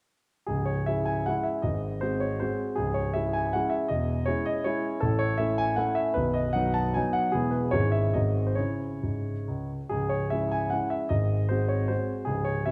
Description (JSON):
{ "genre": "classical, romantic triple-time dance for piano with dotted rhythms", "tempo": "129-172 BPM", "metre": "3/4", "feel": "rubato", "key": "C# minor", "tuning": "A4 = 439 Hz", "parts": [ { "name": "warm concert grand piano", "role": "solo", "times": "0.5-12.7 s", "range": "B0 to A5", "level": "-28 LUFS", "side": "equal", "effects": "none" } ], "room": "moderate scoring stage reverb, RT60 1.7 s", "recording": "dark, warm production", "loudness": "-28 LUFS", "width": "mono", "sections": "0.5-9.9 A section; 9.9-12.7 A section", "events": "none", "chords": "0.5 C#m; 1.6 G#7; 2.8 C#m; 3.9 C#m/E; 5.0 A; 6.2 B; 7.3 E; 7.7 C#m/G#; 8.1 G#7; 8.6 C#m; 11.1 G#7", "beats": "| 0.48 0.89 1.28 | 1.65 2.03 2.42 | 2.79 3.16 3.53 | 3.90 4.28 4.66 | 5.02 5.39 5.78 | 6.16 6.56 6.95 | 7.32 7.72 8.14 | 8.57 9.03 9.47 | 9.91 10.32 10.72 | 11.11 11.50 11.90 | 12.28 12.67" }